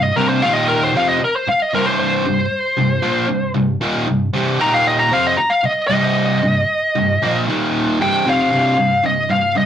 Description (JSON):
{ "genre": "rock", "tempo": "115 BPM", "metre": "4/4", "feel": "straight", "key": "C minor", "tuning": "A4 = 441 Hz", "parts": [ { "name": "biting lead guitar", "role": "melody", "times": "0.0-9.7 s", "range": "Bb4 to Bb5", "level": "-16 LUFS", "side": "left 1 dB", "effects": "overdrive" }, { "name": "distorted electric guitar", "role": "riff", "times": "0.0-9.7 s", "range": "C2 to Bb3", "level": "-17 LUFS", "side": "equal", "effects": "distortion" } ], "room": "moderate studio ambience, RT60 0.5 s", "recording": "rough rehearsal-room recording, warm saturation", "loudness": "-14 LUFS", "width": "side -9 dB against mid", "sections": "0.0-8.5 A section; 8.5-9.7 B section", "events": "lead electric guitar solo 0.0-8.5", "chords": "0.4 Eb5; 0.9 Cm; 4.6 Eb5; 5.1 Cm; 7.5 Eb5; 8.0 C5; 8.5 Cm" }